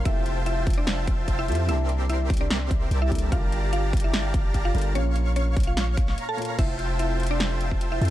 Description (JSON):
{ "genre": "future bass", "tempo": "147 BPM", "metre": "4/4", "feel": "half-time", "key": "F major", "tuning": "A4 = 440 Hz", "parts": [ { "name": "dark concert grand piano", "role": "accompaniment", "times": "0.0-6.6 s", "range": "Bb2 to A5", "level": "-36 LUFS", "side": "left 1 dB", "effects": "sidechain pumping, ping-pong delay" }, { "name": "dense compressed supersaw", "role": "riff", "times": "0.0-8.1 s", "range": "C4 to Db6", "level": "-32 LUFS", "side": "equal", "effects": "sidechain pumping" }, { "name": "long sustained 808-style bass", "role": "bass", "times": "0.0-8.1 s", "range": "F1 to F2", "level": "-25 LUFS", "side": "equal", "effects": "sidechain pumping" }, { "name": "mallet-like synth pluck", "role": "melody", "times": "0.1-8.1 s", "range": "Db4 to A5", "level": "-32 LUFS", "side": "equal", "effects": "chorus, sidechain pumping, dub echo" }, { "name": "big-room dance drum kit", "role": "drums", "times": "0.1-8.1 s", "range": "crash cymbal, hi-hat, snare drum", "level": "-31 LUFS", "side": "equal", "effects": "small room ambience" }, { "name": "electronic kick drum", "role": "drums", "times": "0.1-7.8 s", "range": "none", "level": "-24 LUFS", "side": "equal", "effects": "small room ambience" }, { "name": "airy breathy pad", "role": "sustained chords", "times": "6.9-8.1 s", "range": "F3 to E5", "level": "-39 LUFS", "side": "equal", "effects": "chorus, phaser, sidechain pumping" } ], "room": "little or no reverb", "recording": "dark, warm production", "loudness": "-22 LUFS", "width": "side -14 dB against mid", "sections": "0.0-6.6 A section; 6.6-8.1 A section", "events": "drop 0.0-6.6, 6.6-8.1; break 6.2-6.6", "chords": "0.1 Fmaj9; 1.7 C13; 3.3 Gm9; 5.0 Bbm; 6.6 Fmaj9", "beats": "| 0.06 0.46 0.87 1.28 | 1.69 2.10 2.50 2.91 | 3.32 3.73 4.14 4.54 | 4.95 5.36 5.77 6.18 | 6.58 6.99 7.40 7.81" }